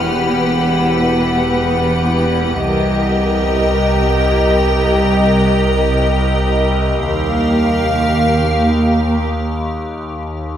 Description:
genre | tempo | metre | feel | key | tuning
cinematic, suspense film score | free time | none | none | unclear | A4 = 440 Hz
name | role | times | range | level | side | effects
muted chamber violin section | melody | 0.0-9.3 s | Eb5 to F#5 | -22 LUFS | left 3 dB | none
muted chamber violin section | second line | 0.0-9.3 s | G4 to B4 | -20 LUFS | right 1 dB | none
icy glass pad | sustained chords | 0.0-9.3 s | G4 to F#5 | -21 LUFS | left 1 dB | chorus, built-in reverb
muted chamber cello section | bass | 0.0-9.3 s | C2 to E2 | -19 LUFS | right 2 dB | none
muted symphonic double bass section | bass | 0.0-9.2 s | E1 to D#2 | -20 LUFS | right 1 dB | none
overtone-sweeping drone | drone | 0.0-10.6 s | C2 to E2 | -22 LUFS | left 1 dB | chorus, built-in reverb, phaser
muted chamber violin section | texture | 0.0-6.6 s | G5 to E#6 | -28 LUFS | left 4 dB | none
room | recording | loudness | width
moderate recital hall reverb, RT60 1.5 s | none | -13 LUFS | side -10 dB against mid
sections
0.0-10.6 A section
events
break 9.3-10.6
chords
0.0 Emadd9; 2.6 Cm7; 7.1 D#add9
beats
free time

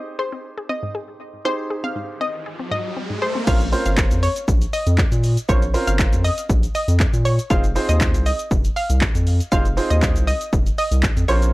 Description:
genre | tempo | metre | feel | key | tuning
dance-pop | 119 BPM | 4/4 | straight | Bb dorian | A4 = 440 Hz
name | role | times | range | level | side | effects
analog pluck | melody | 0.0-11.4 s | C5 to F5 | -25 LUFS | equal | chorus, sidechain pumping, low-pass filter
clear grand piano | accompaniment | 0.0-11.5 s | C4 to C5 | -26 LUFS | right 2 dB | sidechain pumping, low-pass filter
wide unison pluck | arpeggios | 0.2-3.4 s | Ab2 to Ab4 | -31 LUFS | left 2 dB | sidechain pumping, low-pass filter, analog delay
riser | sound effects | 2.2-3.5 s | none | -30 LUFS | equal | none
round analog bass | bass | 3.5-11.5 s | F1 to Bb2 | -19 LUFS | equal | sidechain pumping
punchy analog drum machine | drums | 3.5-11.5 s | crash cymbal, handclaps, hi-hat, kick drum, shaker | -20 LUFS | equal | none
room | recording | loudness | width
little or no reverb | dry, gritty hardware recording, cassette tape | -17 LUFS | side -20 dB against mid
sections
0.0-3.5 A section; 3.5-11.5 B section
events
riser 2.2-3.5; drop 3.5-11.5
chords
0.0 Abmaj7; 3.5 Bbmadd9; 7.5 Fm7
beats
0.45 0.95 | 1.45 1.96 2.46 2.97 | 3.47 3.98 4.48 4.98 | 5.49 5.99 6.50 7.00 | 7.50 8.01 8.51 9.02 | 9.52 10.03 10.53 11.03

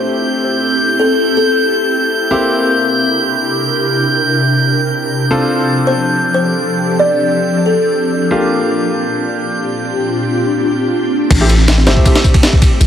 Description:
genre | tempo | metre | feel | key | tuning
drum and bass, jungle | 160 BPM | 4/4 | straight | A phrygian | A4 = 441 Hz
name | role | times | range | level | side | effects
kalimba | melody | 0.0-1.7, 5.9-8.2, 11.9-12.4 s | A4 to D5 | -18 LUFS | left 1 dB | dub echo
ethereal airy pad | sustained chords | 0.0-12.9 s | Bb2 to Bb4 | -16 LUFS | equal | ensemble chorus, built-in reverb, phaser, vintage 12-bit sampler grit
clear concert grand piano | stabs | 0.0-12.2 s | A3 to A4 | -19 LUFS | left 1 dB | dub echo
drifting glass-harmonics texture | texture | 0.0-10.6 s | G6 | -18 LUFS | right 2 dB | chorus, built-in reverb
long sustained 808-style bass | bass | 11.3-12.9 s | G1 to A1 | -10 LUFS | equal | tube saturation
breakbeat sampler-style drum kit | drums | 11.3-12.9 s | crash cymbal, kick drum, ride cymbal, snare drum | -10 LUFS | equal | none
electronic tambourine and snare drum | drums | 11.3-12.9 s | none | -23 LUFS | left 2 dB | overdrive, high-pass filter on perc, high-pass filter on snare
room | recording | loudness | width
moderate lush hall reverb, RT60 2.1 s | vinyl crackle | -11 LUFS | side -9 dB against mid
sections
0.0-11.3 A section; 11.3-12.9 B section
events
drop 11.3-12.9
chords
0.0 Am7; 2.3 C7; 5.3 F6; 8.3 Bb6; 11.3 Am7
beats
0.06 0.43 | 0.81 1.18 1.56 1.93 | 2.31 2.68 3.06 3.43 | 3.81 4.18 4.56 4.93 | 5.31 5.68 6.06 6.43 | 6.81 7.18 7.56 7.93 | 8.31 8.68 9.06 9.43 | 9.81 10.18 10.56 10.93 | 11.31 11.68 12.06 12.43 | 12.81

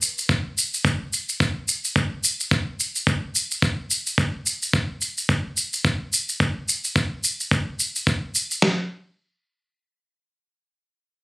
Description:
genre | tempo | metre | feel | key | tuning
organic downtempo | 108 BPM | 4/4 | swing 57% on 16ths | none | none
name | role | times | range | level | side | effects
shaker | drums | 0.0-8.6 s | none | -23 LUFS | equal | overdrive
dusty soul sampler-style drum kit | drums | 0.3-8.8 s | kick drum, snare drum | -20 LUFS | equal | overdrive
room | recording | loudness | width
little or no reverb | recorded on a phone in the room, studio ambience, compression | -21 LUFS | side -24 dB against mid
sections
0.0-8.6 A section; 8.6-10.8 B section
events
none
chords
none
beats
0.29 0.84 1.40 | 1.96 2.51 3.07 3.62 | 4.18 4.73 5.29 5.84 | 6.40 6.96 7.51 8.07 | 8.62

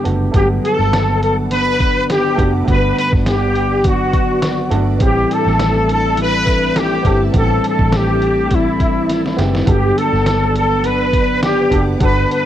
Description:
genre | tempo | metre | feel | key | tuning
indie pop, bedroom pop | 103 BPM | 4/4 | swing 55% on 16ths | G major | A4 = 443 Hz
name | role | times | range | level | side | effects
breathy trumpet | melody | 0.0-12.5 s | E4 to B4 | -16 LUFS | left 1 dB | ensemble chorus, analog delay
mellow electric guitar | accompaniment | 0.0-12.5 s | G2 to E4 | -20 LUFS | left 1 dB | lush chorus, warbly pitch drift, cassette tape
warm upright piano | accompaniment | 0.0-12.5 s | A3 to A4 | -27 LUFS | right 5 dB | cassette tape
vintage muted fingered electric bass | bass | 0.1-12.2 s | F#1 to A1 | -20 LUFS | equal | none
lo-fi sampler-style drum kit | drums | 0.1-12.5 s | hi-hat, kick drum, snare drum | -19 LUFS | equal | cassette tape
string machine, cellos | sustained chords | 0.4-12.5 s | A4 to D6 | -27 LUFS | right 2 dB | phaser, ensemble chorus, cassette tape
room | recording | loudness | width
light reverb | home recording on cassette | -12 LUFS | side -11 dB against mid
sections
0.3-12.5 A section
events
drum fill 9.1-9.7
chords
0.3 Gmaj7; 5.0 Am7; 9.7 Gmaj7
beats
| 0.34 0.92 1.51 2.09 | 2.67 3.26 3.84 4.42 | 5.01 5.59 6.17 6.76 | 7.34 7.92 8.51 9.09 | 9.67 10.26 10.84 11.42 | 12.01

